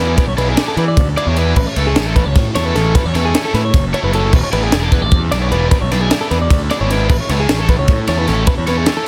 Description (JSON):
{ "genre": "math rock and midwest emo", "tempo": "304 BPM (eighths)", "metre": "7/8", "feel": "straight", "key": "A major", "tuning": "A4 = 440 Hz", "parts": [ { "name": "clean electric guitar", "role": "arpeggios", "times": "0.0-9.1 s", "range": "G#4 to D5", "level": "-23 LUFS", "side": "equal", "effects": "none" }, { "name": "cranked stack guitar", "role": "riff", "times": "0.0-9.1 s", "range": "B3 to D5", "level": "-24 LUFS", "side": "equal", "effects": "overdrive" }, { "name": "fuzz picked electric bass", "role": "bass", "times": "0.0-8.9 s", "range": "E1 to E3", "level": "-19 LUFS", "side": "equal", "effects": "overdrive" }, { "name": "crisp fusion drum kit", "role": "drums", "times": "0.2-9.0 s", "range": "crash cymbal, kick drum, ride cymbal, snare drum", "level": "-18 LUFS", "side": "equal", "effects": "none" } ], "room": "little or no reverb", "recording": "dense, heavily limited modern master", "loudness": "-15 LUFS", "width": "mono", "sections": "0.0-9.1 A section", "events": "none", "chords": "0.0 E7(no3); 1.6 A6; 4.3 E7sus4; 7.1 A", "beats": "| 0.18 0.38 0.57 0.77 0.97 1.17 1.37 | 1.57 1.76 1.96 2.16 2.36 2.56 2.75 | 2.95 3.15 3.35 3.54 3.74 3.94 4.14 | 4.33 4.53 4.73 4.92 5.12 5.32 5.52 | 5.71 5.91 6.11 6.31 6.50 6.70 6.90 | 7.09 7.29 7.49 7.69 7.88 8.08 8.28 | 8.47 8.67 8.87 9.07" }